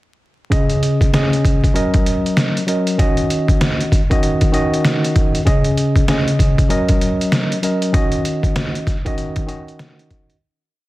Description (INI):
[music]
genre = hip hop, boom-bap hip-hop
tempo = 97 BPM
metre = 4/4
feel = swing 62% on 16ths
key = Eb minor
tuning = A4 = 441 Hz
[part]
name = tine electric piano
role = accompaniment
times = 0.5-10.4 s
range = Db3 to Eb5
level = -18 LUFS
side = equal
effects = medium stereo tremolo, cassette tape
[part]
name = trip hop sampler-style drum kit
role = drums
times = 0.5-10.4 s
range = hi-hat, kick drum, snare drum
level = -16 LUFS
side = equal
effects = overdrive
[sound]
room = light reverb, digital ambience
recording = dense, heavily limited modern master, vinyl crackle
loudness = -14 LUFS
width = side -18 dB against mid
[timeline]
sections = 0.5-10.4 verse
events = fade-out 7.9-10.4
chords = 0.5 Dbsus2; 1.8 Gb6; 3.0 Ebm7; 5.5 Dbsus2; 6.7 Gb6; 7.9 Ebm7